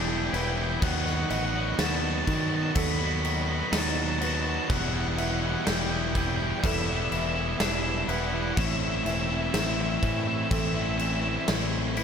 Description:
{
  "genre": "post-rock",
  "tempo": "62 BPM",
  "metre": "4/4",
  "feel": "straight",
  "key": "E minor",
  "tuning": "A4 = 440 Hz",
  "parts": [
    { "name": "octave-fuzz lead guitar", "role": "melody", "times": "0.0-11.4 s", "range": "E5 to B5", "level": "-33 LUFS", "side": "equal", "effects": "distortion, tape echo" },
    { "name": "twangy electric guitar", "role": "arpeggios", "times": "0.0-12.0 s", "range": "E2 to F#4", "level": "-37 LUFS", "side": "left 4 dB", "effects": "tape echo" },
    { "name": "distorted electric guitar", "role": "riff", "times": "0.0-12.0 s", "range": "A2 to F#4", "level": "-32 LUFS", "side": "right 13 dB", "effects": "distortion" },
    { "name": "thick fuzz guitar", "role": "riff", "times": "0.0-12.0 s", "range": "A2 to F#4", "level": "-33 LUFS", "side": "left 14 dB", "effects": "distortion" },
    { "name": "growling fingered electric bass", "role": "bass", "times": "0.0-12.0 s", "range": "E1 to D#3", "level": "-31 LUFS", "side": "equal", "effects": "overdrive" },
    { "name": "felt-muted upright piano", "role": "arpeggios", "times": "0.3-12.0 s", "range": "A4 to E5", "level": "-41 LUFS", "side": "right 5 dB", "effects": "tape echo" },
    { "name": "huge arena drum kit", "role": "drums", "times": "0.3-12.0 s", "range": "crash cymbal, kick drum, snare drum", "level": "-30 LUFS", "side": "left 1 dB", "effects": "none" }
  ],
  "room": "small room reverb",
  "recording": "none",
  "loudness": "-24 LUFS",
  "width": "side -7 dB against mid",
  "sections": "0.0-12.0 A section",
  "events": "none",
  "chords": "0.0 Em7; 0.8 B; 4.7 Em7; 8.6 Am"
}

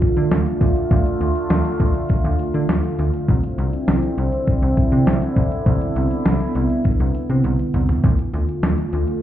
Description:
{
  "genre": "synth-pop",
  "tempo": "101 BPM",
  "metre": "4/4",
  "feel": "straight",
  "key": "D dorian",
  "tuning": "A4 = 444 Hz",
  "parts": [
    { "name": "sweeping resonant pad", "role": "sustained chords", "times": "0.0-9.2 s", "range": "D3 to F4", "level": "-22 LUFS", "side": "right 1 dB", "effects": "chorus, phaser" },
    { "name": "detuned 8-bit digital drum machine", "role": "drums", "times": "0.0-9.2 s", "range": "hi-hat, kick drum, snare drum, toms", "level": "-20 LUFS", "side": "equal", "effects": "none" },
    { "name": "slap-like FM bass", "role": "bass", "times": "0.2-9.1 s", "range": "C2 to D3", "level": "-19 LUFS", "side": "equal", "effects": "none" }
  ],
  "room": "light reverb",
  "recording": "heard muffled through a wall, club reverb, EQ",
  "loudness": "-16 LUFS",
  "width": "side -12 dB against mid",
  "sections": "0.0-9.2 A section",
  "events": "drum fill 7.4-8.0",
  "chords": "0.0 Dm; 3.3 Cadd9; 8.0 Dm"
}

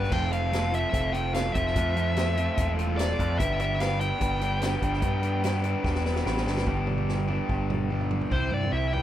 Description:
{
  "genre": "indie rock",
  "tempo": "146 BPM",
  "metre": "4/4",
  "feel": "straight",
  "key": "G mixolydian",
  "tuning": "A4 = 436 Hz",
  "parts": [
    { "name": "dark smooth lead guitar", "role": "melody", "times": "0.0-9.0 s", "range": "B4 to G5", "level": "-30 LUFS", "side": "left 1 dB", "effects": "overdrive, analog delay" },
    { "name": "phased analog pad", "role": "sustained chords", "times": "0.7-9.0 s", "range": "F4 to E6", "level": "-45 LUFS", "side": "equal", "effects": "none" },
    { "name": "overdriven electric guitar", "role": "riff", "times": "0.0-9.0 s", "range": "G2 to B4", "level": "-32 LUFS", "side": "right 6 dB", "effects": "lush chorus" },
    { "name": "raw garage guitar", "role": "riff", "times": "0.0-9.0 s", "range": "F3 to G4", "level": "-33 LUFS", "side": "left 8 dB", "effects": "overdrive" },
    { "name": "overdriven picked electric bass", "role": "bass", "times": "0.0-9.0 s", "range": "E1 to G2", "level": "-28 LUFS", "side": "equal", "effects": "none" },
    { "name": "vintage drum kit", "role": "drums", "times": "0.0-9.0 s", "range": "crash cymbal, hi-hat, kick drum, snare drum, toms", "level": "-32 LUFS", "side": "equal", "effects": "none" }
  ],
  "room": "light reverb",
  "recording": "rough home demo mix",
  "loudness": "-24 LUFS",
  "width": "side -12 dB against mid",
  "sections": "0.0-6.7 A section; 6.7-8.3 B section",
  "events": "drum fill 5.8-6.7, 7.9-8.3",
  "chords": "0.1 Fmaj7; 3.4 Gadd9; 6.7 G; 8.3 Cmaj7"
}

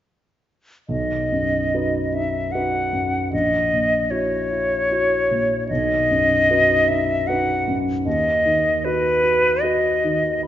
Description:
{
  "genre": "classical, romantic duo for flute and grand piano",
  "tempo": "76 BPM",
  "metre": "3/4",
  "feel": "rubato",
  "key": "B major",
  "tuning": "A4 = 440 Hz",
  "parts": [
    { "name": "bright concert flute", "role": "melody", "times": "0.9-10.4 s", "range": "B4 to F#5", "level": "-19 LUFS", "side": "left 1 dB", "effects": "none" },
    { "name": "warm concert grand piano", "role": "accompaniment", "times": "0.9-10.5 s", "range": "A#1 to C#5", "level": "-23 LUFS", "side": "right 1 dB", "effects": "none" }
  ],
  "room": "wet scoring stage reverb, RT60 1.6 s",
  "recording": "nothing above 7.5 kHz",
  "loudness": "-17 LUFS",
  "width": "side -11 dB against mid",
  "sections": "0.9-10.5 A section",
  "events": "none",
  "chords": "0.9 B; 3.3 F#7/A#; 5.7 B; 8.1 B/D#"
}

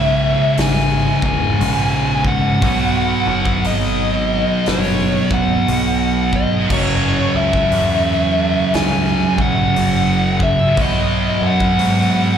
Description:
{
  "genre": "stoner and doom metal",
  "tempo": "59 BPM",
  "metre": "4/4",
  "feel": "swing 63% on 8ths",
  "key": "unclear",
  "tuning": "A4 = 439 Hz",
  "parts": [
    { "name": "fuzz lead guitar", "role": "melody", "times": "0.0-12.4 s", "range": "C#5 to G#5", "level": "-20 LUFS", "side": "equal", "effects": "distortion, slapback echo, analog delay" },
    { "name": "high-gain distorted guitar", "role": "riff", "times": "0.0-12.4 s", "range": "C#2 to B3", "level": "-21 LUFS", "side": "right 1 dB", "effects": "distortion" },
    { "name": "thick fuzz guitar", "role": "riff", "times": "0.0-12.4 s", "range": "C#2 to B3", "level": "-22 LUFS", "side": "left 5 dB", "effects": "distortion, slapback echo" },
    { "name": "thick fuzz guitar", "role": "riff", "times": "0.0-12.4 s", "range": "C#2 to B3", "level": "-22 LUFS", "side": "right 8 dB", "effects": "distortion" },
    { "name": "growling picked electric bass", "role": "bass", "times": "0.0-12.4 s", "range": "D#1 to G#2", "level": "-22 LUFS", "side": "equal", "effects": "overdrive, tube saturation" },
    { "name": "big rock drum kit", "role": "drums", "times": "0.6-12.1 s", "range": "crash cymbal, hi-hat, kick drum, snare drum", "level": "-23 LUFS", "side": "left 1 dB", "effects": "none" }
  ],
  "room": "light reverb",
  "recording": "live gig heard through the venue's PA, club reverb",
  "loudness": "-14 LUFS",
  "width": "side -8 dB against mid",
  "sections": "0.0-12.4 A section",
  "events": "none",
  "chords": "0.0 C#m; 2.6 B; 6.7 F#5; 10.8 B"
}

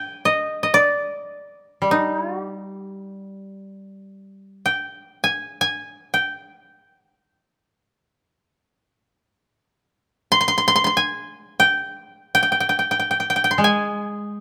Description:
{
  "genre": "japanese traditional, Japanese chamber music",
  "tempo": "free time",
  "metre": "none",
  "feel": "none",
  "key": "G miyako bushi",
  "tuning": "A4 = 438 Hz",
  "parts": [
    { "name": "koto", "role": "melody", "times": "0.0-14.4 s", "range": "G4 to C6", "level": "-20 LUFS", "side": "equal", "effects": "none" },
    { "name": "koto", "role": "accompaniment", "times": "1.8-4.6, 13.6-14.4 s", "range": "G3 to Ab3", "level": "-27 LUFS", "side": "equal", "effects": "none" }
  ],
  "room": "light reverb",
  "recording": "close, detailed microphones",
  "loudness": "-20 LUFS",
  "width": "mono",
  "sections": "0.0-3.8 A section; 3.8-14.4 A section",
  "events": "none",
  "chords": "none"
}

